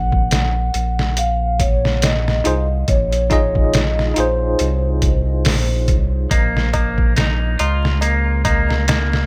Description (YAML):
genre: trip hop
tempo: 70 BPM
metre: 4/4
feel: swing 57% on 16ths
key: unclear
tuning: A4 = 440 Hz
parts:
  - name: vibraphone with soft mallets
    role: melody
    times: 0.0-5.8 s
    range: C5 to Gb5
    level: -26 LUFS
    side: equal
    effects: tape echo
  - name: round analog bass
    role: bass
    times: 0.0-9.3 s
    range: Bb1 to Db2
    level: -21 LUFS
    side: equal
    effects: none
  - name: trip hop sampler-style drum kit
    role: drums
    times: 0.1-9.3 s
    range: hi-hat, kick drum, snare drum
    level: -21 LUFS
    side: equal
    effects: none
  - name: bell-like tine electric piano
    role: accompaniment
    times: 2.4-6.3 s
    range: Eb4 to Eb5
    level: -25 LUFS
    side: equal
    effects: tremolo, low-pass filter
  - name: clean electric guitar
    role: arpeggios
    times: 6.3-9.3 s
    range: Bb3 to F4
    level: -24 LUFS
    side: equal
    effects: tape echo
  - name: tabla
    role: percussion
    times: 6.3-9.3 s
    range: none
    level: -30 LUFS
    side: equal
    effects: none
room: digital ambience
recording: none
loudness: -17 LUFS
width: mono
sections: 0.0-9.3 A section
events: none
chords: 0.0 Fm7/Bb; 6.3 Bbmadd11